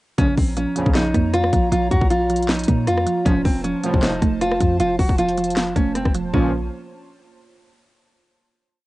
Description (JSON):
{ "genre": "hip hop, trap", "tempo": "156 BPM", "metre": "4/4", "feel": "half-time", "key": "Bb harmonic minor", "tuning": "A4 = 443 Hz", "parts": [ { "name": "nylon-string guitar", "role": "melody", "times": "0.2-6.5 s", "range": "C4 to Gb4", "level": "-21 LUFS", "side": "equal", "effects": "low-pass filter, cassette tape" }, { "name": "mallet-like synth pluck", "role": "accompaniment", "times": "0.2-6.5 s", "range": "F3 to F4", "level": "-25 LUFS", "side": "right 5 dB", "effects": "chorus, low-pass filter" }, { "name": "airy breathy pad", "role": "sustained chords", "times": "0.4-6.5 s", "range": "F4 to Bb5", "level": "-34 LUFS", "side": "equal", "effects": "chorus" }, { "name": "analog synth brass", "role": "stabs", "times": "0.2-6.5 s", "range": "Bb1 to F3", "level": "-25 LUFS", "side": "equal", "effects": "chorus" }, { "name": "warm 808-style bass", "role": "bass", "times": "0.2-6.7 s", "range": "Eb1 to Bb2", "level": "-25 LUFS", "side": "left 1 dB", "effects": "none" }, { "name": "trap drum kit", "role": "drums", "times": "0.2-6.4 s", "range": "handclaps, hi-hat, kick drum, rim click, snare drum", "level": "-20 LUFS", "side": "left 1 dB", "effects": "none" } ], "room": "light reverb", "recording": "home recording on cassette, nothing above 10.4 kHz", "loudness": "-17 LUFS", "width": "side -18 dB against mid", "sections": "0.2-6.3 hook; 6.3-7.9 final chord", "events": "none", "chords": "0.2 Bbm; 3.3 F; 6.3 Bbm" }